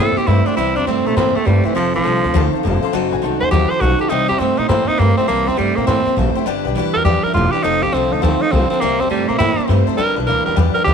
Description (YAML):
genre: rock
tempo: 204 BPM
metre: 4/4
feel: swing 64% on 8ths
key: C mixolydian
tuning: A4 = 440 Hz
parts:
  - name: raspy tenor saxophone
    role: melody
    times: 0.0-10.9 s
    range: E3 to C5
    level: -18 LUFS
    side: right 2 dB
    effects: none
  - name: clear upright piano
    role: accompaniment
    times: 0.0-10.9 s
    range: B4 to C6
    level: -27 LUFS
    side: left 13 dB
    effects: none
  - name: picked steel-string acoustic guitar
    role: accompaniment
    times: 0.0-10.9 s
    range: C3 to C5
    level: -22 LUFS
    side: left 14 dB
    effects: none
  - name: electric guitar through a small old amp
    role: riff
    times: 0.0-10.9 s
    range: F2 to Bb3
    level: -22 LUFS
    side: right 15 dB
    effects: none
  - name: upright bass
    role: bass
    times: 0.0-10.9 s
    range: E1 to Bb2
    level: -19 LUFS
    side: equal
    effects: none
room: light reverb, studio reverb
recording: 1960s-style stereo with parts hard left and right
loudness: -14 LUFS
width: side -6 dB against mid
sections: 0.0-10.9 A section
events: tenor saxophone solo 0.0-10.9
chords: 0.0 C; 1.8 F; 2.9 F#dim7; 4.1 C; 6.5 G; 7.6 F; 8.8 C; 10.0 G